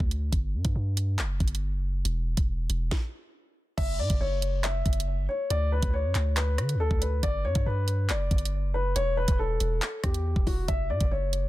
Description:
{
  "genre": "hip hop, drill",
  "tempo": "139 BPM",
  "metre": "4/4",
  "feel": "half-time",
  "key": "F# phrygian",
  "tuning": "A4 = 439 Hz",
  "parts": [
    { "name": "long sustained 808-style bass", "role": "bass", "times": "0.0-11.5 s", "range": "E1 to D3", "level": "-27 LUFS", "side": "equal", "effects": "none" },
    { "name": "drill drum kit", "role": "drums", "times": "0.0-11.4 s", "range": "crash cymbal, handclaps, hi-hat, kick drum, rim click, snare drum", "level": "-28 LUFS", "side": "equal", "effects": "none" },
    { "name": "dark baby grand piano", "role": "melody", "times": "3.8-11.5 s", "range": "F#4 to E5", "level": "-31 LUFS", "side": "left 2 dB", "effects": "digital delay" }
  ],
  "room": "little or no reverb",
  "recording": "dense, heavily limited modern master",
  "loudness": "-25 LUFS",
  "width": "side -16 dB against mid",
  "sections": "0.0-3.8 A section; 3.8-11.5 B section",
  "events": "break 0.0-3.8; stop 2.9-3.8",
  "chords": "0.3 N.C.; 3.8 F#7(no3); 5.5 Dmaj7(no3); 7.2 G; 9.0 Em; 10.7 F#m7"
}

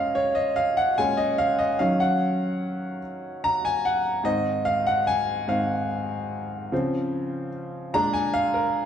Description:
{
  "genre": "gospel",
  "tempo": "49 BPM (dotted quarters)",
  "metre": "6/8",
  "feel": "straight",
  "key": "unclear",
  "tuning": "A4 = 440 Hz",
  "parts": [
    { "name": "warm grand piano", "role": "solo", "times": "0.0-8.9 s", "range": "Ab2 to Bb5", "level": "-22 LUFS", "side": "equal", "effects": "none" }
  ],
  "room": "wet large studio reverb, RT60 1.3 s",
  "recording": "band playing live in one room",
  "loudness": "-22 LUFS",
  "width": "side -8 dB against mid",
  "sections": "0.0-8.9 A section",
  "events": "grand piano solo 0.0-8.9",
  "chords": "0.0 Bbm7; 1.8 Ebm7; 4.3 Ab; 6.7 Dbmaj7; 7.9 Bb7"
}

